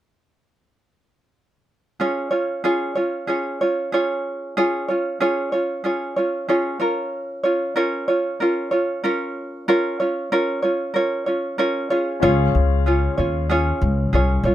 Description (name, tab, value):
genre	acoustic pop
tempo	94 BPM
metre	4/4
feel	swing 60% on 16ths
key	Db major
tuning	A4 = 439 Hz
part	tenor ukulele	accompaniment	2.0-14.5 s	Db4 to Db5	-20 LUFS	right 1 dB	none
part	warm concert grand piano	accompaniment	12.2-14.5 s	Db4 to F5	-27 LUFS	left 9 dB	none
part	upright bass	bass	12.2-14.5 s	C2 to Eb2	-19 LUFS	left 1 dB	none
room	little or no reverb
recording	close, detailed microphones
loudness	-19 LUFS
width	side -12 dB against mid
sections	2.0-12.2 A section; 12.2-14.5 B section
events	none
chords	2.0 Db; 6.8 Bbm; 11.9 Db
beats	| 2.00 2.64 3.28 3.92 | 4.56 5.20 5.84 6.48 | 7.12 7.76 8.40 9.04 | 9.67 10.31 10.95 11.59 | 12.22 12.86 13.50 14.13